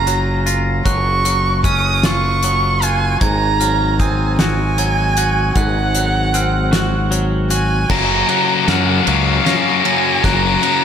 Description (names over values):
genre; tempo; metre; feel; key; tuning
post-rock; 51 BPM (dotted quarters); 6/8; straight; Gb lydian; A4 = 440 Hz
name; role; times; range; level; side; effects
dark violin; melody; 0.0-10.8 s; F5 to Eb6; -19 LUFS; right 4 dB; slapback echo, digital delay
glockenspiel with brass mallets; arpeggios; 0.0-10.8 s; Eb6 to Bb6; -26 LUFS; right 5 dB; slapback echo, digital delay
twangy electric guitar; arpeggios; 0.0-10.8 s; Ab2 to Gb4; -22 LUFS; left 2 dB; slapback echo, digital delay
growling fingered electric bass; bass; 0.0-10.6 s; Gb1 to Gb2; -18 LUFS; equal; overdrive
loose indie drum kit; drums; 0.1-10.8 s; crash cymbal, hi-hat, kick drum, ride cymbal, snare drum; -20 LUFS; equal; none
thick fuzz guitar; riff; 7.9-10.8 s; Gb2 to Db4; -16 LUFS; left 12 dB; distortion, slapback echo
room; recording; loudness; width
moderate scoring stage reverb, RT60 2.0 s; big arena sound; -13 LUFS; side -8 dB against mid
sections
0.0-7.9 A section; 7.9-10.8 B section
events
build-up 7.9-10.8; drum fill 7.9-10.8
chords
0.0 Gbmaj7; 3.2 Ab7; 7.9 Gbmaj7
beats
| 0.86 2.04 | 3.22 4.39 | 5.56 6.73 | 7.90 9.07 | 10.24